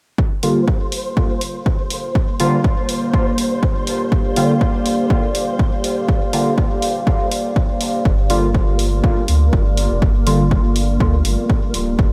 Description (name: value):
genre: dub techno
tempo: 122 BPM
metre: 4/4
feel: swing 53% on 16ths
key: G minor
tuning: A4 = 440 Hz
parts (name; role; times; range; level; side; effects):
- deep dark ambient pad; sustained chords; 2.3-12.1 s; Bb3 to F5; -25 LUFS; equal; chorus, built-in reverb, sidechain pumping
- electronic kick drum; drums; 0.2-12.1 s; none; -20 LUFS; equal; none
- flickering grainy texture; texture; 0.6-12.1 s; Bb3 to C5; -31 LUFS; equal; built-in reverb, analog chorus, sidechain pumping
- resonant sweep polysynth; stabs; 0.4-10.4 s; D3 to F4; -24 LUFS; equal; chorus, phaser, sidechain pumping, dub echo
- electronic hi-hat; drums; 0.4-11.8 s; none; -29 LUFS; equal; none
- soft dub sub bass; bass; 8.1-12.1 s; D1 to D2; -20 LUFS; equal; sidechain pumping
room: moderate huge ambient reverb, RT60 8.3 s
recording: dreamy mix soaked in reverb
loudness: -17 LUFS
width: mono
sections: 0.2-8.1 A section; 8.1-12.1 B section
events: filter sweep on analog polysynth 0.2-8.1; filter sweep on ambient pad 0.2-8.1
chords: 0.2 Gm7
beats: | 0.18 0.68 1.17 1.66 | 2.15 2.64 3.13 3.63 | 4.12 4.61 5.10 5.59 | 6.09 6.58 7.07 7.56 | 8.05 8.54 9.04 9.53 | 10.02 10.51 11.00 11.50 | 11.99